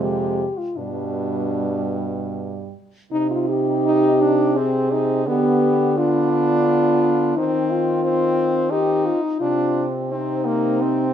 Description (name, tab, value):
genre	classical, lyrical piece for horn quartet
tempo	75-92 BPM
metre	3/4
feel	rubato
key	C minor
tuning	A4 = 440 Hz
part	mellow French horn	melody	0.0-11.1 s	D4 to Ab4	-21 LUFS	left 4 dB	none
part	warm French horn	second line	0.0-11.1 s	G3 to Eb4	-25 LUFS	right 7 dB	none
part	clear French horn	accompaniment	0.0-11.1 s	B2 to Eb4	-23 LUFS	equal	none
part	warm French horn	bass	0.0-11.1 s	F2 to Eb3	-26 LUFS	right 3 dB	none
room	wet stone room reverb, RT60 1.2 s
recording	none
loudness	-17 LUFS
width	side -9 dB against mid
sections	0.0-3.1 A section; 3.1-11.1 B section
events	none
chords	0.0 Dm7b5/F (rootless); 0.8 G; 3.1 Cm; 5.3 G7/D; 7.4 Cm/Eb; 9.4 Cm